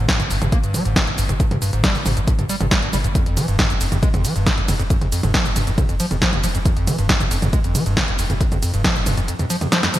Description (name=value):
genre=driving peak-time techno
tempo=137 BPM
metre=4/4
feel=straight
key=unclear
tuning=A4 = 440 Hz
part: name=overdriven acid bass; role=riff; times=0.0-10.0 s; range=F2 to Bb3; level=-22 LUFS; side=equal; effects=distortion, wide subtle chorus, sidechain pumping, digital delay
part: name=warm sub bass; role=bass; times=0.0-9.3 s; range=F1 to G1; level=-26 LUFS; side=equal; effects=overdrive, sidechain pumping, low-pass filter
part: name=electronic kick drum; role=drums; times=0.1-8.9 s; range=none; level=-20 LUFS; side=equal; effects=none
part: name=punchy analog drum machine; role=drums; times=0.1-10.0 s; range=hi-hat, ride cymbal, shaker, snare drum, toms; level=-21 LUFS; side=equal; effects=gated reverb
room=light reverb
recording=bright 1980s-style digital production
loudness=-16 LUFS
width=side -14 dB against mid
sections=0.0-10.0 A section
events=drum fill 9.8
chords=none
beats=0.09 0.52 0.96 | 1.40 1.84 2.27 2.71 | 3.15 3.59 4.03 4.46 | 4.90 5.34 5.78 6.22 | 6.66 7.09 7.53 7.97 | 8.41 8.84 9.28 9.72